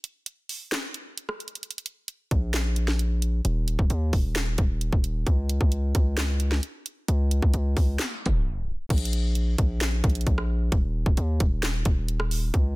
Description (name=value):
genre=hip hop, trap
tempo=132 BPM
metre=4/4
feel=half-time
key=unclear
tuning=A4 = 440 Hz
part: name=trap drum kit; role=drums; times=0.0-12.6 s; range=crash cymbal, handclaps, hi-hat, kick drum, rim click, snare drum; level=-25 LUFS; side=equal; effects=none
part: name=distorted 808-style bass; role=bass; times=2.3-12.8 s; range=Eb1 to Eb2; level=-25 LUFS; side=equal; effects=distortion
room=little or no reverb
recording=dense, heavily limited modern master, tape stop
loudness=-23 LUFS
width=side -22 dB against mid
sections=0.0-8.9 A section; 8.9-12.8 B section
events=break 0.0-1.6, 8.4-8.9; kick muted 1.6-2.1; tape stop 8.0-8.9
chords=none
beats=0.27 0.72 1.18 | 1.63 2.08 2.54 2.99 | 3.45 3.90 4.36 4.81 | 5.27 5.72 6.17 6.63 | 7.08 7.54 7.99 8.45 | 8.90 9.36 9.81 10.27 | 10.72 11.18 11.63 12.08 | 12.54